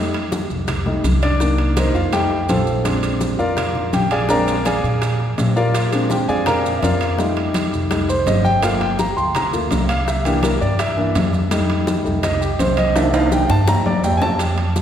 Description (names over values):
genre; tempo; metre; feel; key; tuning
Afro-Cuban jazz; 166 BPM; 4/4; straight; unclear; A4 = 441 Hz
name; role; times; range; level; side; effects
warm concert grand piano; accompaniment; 0.0-14.7 s; Eb3 to C6; -19 LUFS; equal; none
upright bass; bass; 0.0-14.8 s; G1 to Bb2; -21 LUFS; equal; none
bongos; percussion; 0.1-14.8 s; none; -29 LUFS; left 2 dB; none
congas; percussion; 0.1-14.8 s; none; -25 LUFS; left 2 dB; none
timbales; percussion; 0.1-14.8 s; none; -26 LUFS; right 4 dB; none
maracas; percussion; 0.3-14.8 s; none; -35 LUFS; right 5 dB; none
room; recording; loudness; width
wet concert hall reverb, RT60 2.2 s; recorded in a church or concert hall; -16 LUFS; side -9 dB against mid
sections
0.0-14.4 A section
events
grand piano solo 0.0-14.8; drum fill 13.0-14.4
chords
0.0 F7; 1.4 Cm7; 2.1 F7; 2.9 Bb7; 7.2 F7; 8.6 Gm7; 10.1 C7; 11.5 F7; 13.0 C7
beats
0.33 0.69 1.05 | 1.41 1.77 2.13 2.49 | 2.85 3.22 3.58 3.94 | 4.30 4.66 5.02 5.38 | 5.75 6.11 6.47 6.83 | 7.19 7.55 7.91 8.27 | 8.63 8.99 9.35 9.71 | 10.07 10.44 10.79 11.16 | 11.52 11.88 12.24 12.60 | 12.96 13.32 13.68 14.04 | 14.40 14.76